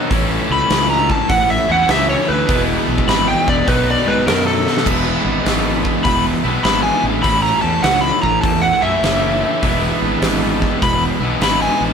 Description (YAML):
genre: blues rock power trio and southern rock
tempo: 101 BPM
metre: 4/4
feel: swing 66% on 8ths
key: E mixolydian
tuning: A4 = 440 Hz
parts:
  - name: overdriven tonewheel organ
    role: sustained chords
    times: 0.0-11.9 s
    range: G3 to B4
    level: -27 LUFS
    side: right 3 dB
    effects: slow rotary speaker
  - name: sludgy distorted guitar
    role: riff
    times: 0.0-11.9 s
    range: A2 to E4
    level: -19 LUFS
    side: equal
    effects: overdrive
  - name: fuzz fingered electric bass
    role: bass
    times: 0.1-11.9 s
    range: E1 to G#2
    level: -22 LUFS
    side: equal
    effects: overdrive
  - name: huge arena drum kit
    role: drums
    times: 0.1-11.6 s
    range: crash cymbal, hi-hat, kick drum, snare drum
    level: -20 LUFS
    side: right 1 dB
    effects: none
  - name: overdriven slide guitar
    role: melody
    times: 0.5-11.8 s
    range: A4 to B5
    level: -17 LUFS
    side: equal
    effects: none
room: light reverb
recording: band playing live in one room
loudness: -13 LUFS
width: side -6 dB against mid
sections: 0.0-4.9 A section; 4.9-11.9 A section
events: electric slide guitar solo 0.0-11.9; drum fill 4.6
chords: 0.1 A7; 2.5 E7; 3.7 B7; 4.9 E7; 7.2 A7; 9.6 E7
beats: | 0.12 0.71 1.30 1.90 | 2.49 3.08 3.68 4.27 | 4.87 5.46 6.06 6.65 | 7.25 7.84 8.44 9.03 | 9.63 10.22 10.82 11.41